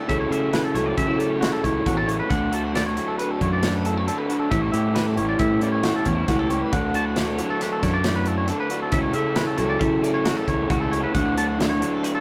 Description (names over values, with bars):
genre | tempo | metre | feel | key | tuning
math rock and midwest emo | 136 BPM | 5/4 | straight | D major | A4 = 436 Hz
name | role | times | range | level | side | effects
electric guitar through a small old amp | accompaniment | 0.0-12.2 s | A2 to A4 | -28 LUFS | equal | none
twangy electric guitar | arpeggios | 0.0-12.2 s | F#4 to A5 | -30 LUFS | equal | none
raw garage guitar | riff | 0.0-12.2 s | A2 to E4 | -31 LUFS | equal | overdrive
modern bright fingered electric bass | bass | 0.1-11.8 s | A1 to C#3 | -28 LUFS | equal | none
modern studio drum kit | drums | 0.1-12.1 s | hi-hat, kick drum, snare drum | -30 LUFS | equal | none
room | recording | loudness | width
light reverb | rough rehearsal-room recording | -22 LUFS | mono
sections
0.0-12.2 A section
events
none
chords
0.1 F#m7/C#; 2.3 Dmaj7; 4.5 A7; 6.7 Dmaj7; 8.9 F#m7/C#; 11.1 Dmaj7